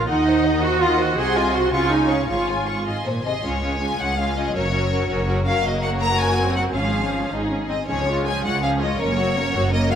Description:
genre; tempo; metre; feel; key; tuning
quick classical-period movement for string orchestra; 108 BPM (dotted quarters); 6/8; straight; Db major; A4 = 440 Hz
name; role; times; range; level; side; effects
rich symphonic violin section; melody; 0.0-10.0 s; Db5 to Db6; -25 LUFS; left 3 dB; none
warm symphonic violin section; second line; 0.0-10.0 s; Db4 to Ab5; -26 LUFS; left 2 dB; none
rich symphonic viola section; accompaniment; 0.0-10.0 s; F3 to Ab4; -22 LUFS; right 2 dB; none
rich symphonic cello section; bass; 0.0-10.0 s; Db2 to Eb3; -28 LUFS; right 2 dB; none
rich symphonic double bass section; bass; 0.0-10.0 s; Gb1 to Eb2; -27 LUFS; right 1 dB; none
room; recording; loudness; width
moderate scoring stage reverb, RT60 1.5 s; none; -18 LUFS; side -8 dB against mid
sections
0.0-3.4 A section; 3.4-10.0 B section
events
none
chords
0.1 Cdim/Eb; 1.2 Ab7/C; 1.7 Db; 2.3 Db/Ab; 2.9 Ab; 3.4 Db; 4.5 Gb; 5.6 Gbadd9; 6.8 Db/Ab; 7.3 Ab; 7.9 Db; 9.0 Gb

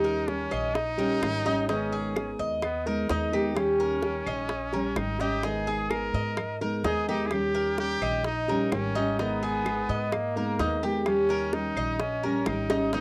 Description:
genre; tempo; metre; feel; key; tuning
latin, Cuban son and guajira; 128 BPM; 4/4; straight; G# harmonic minor; A4 = 444 Hz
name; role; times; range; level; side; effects
bright trumpet; second line; 0.0-13.0 s; A#3 to A#4; -34 LUFS; equal; cassette tape
nylon-string guitar; accompaniment; 0.0-13.0 s; D#3 to A#4; -33 LUFS; equal; cassette tape
Cuban tres; arpeggios; 0.0-13.0 s; D#4 to D#5; -32 LUFS; equal; cassette tape
upright bass; bass; 0.0-13.0 s; G#1 to G#2; -38 LUFS; equal; none
bongos; percussion; 0.0-13.0 s; none; -35 LUFS; equal; none
claves; percussion; 0.5-12.7 s; none; -42 LUFS; equal; none
room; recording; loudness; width
moderate small room reverb, RT60 0.5 s; home recording on cassette; -28 LUFS; mono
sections
0.0-12.9 A section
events
drum fill 12.7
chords
0.0 D#7; 1.7 G#madd9; 3.6 D#7; 5.4 G#madd9; 7.3 D#7; 9.2 G#madd9; 11.1 D#7

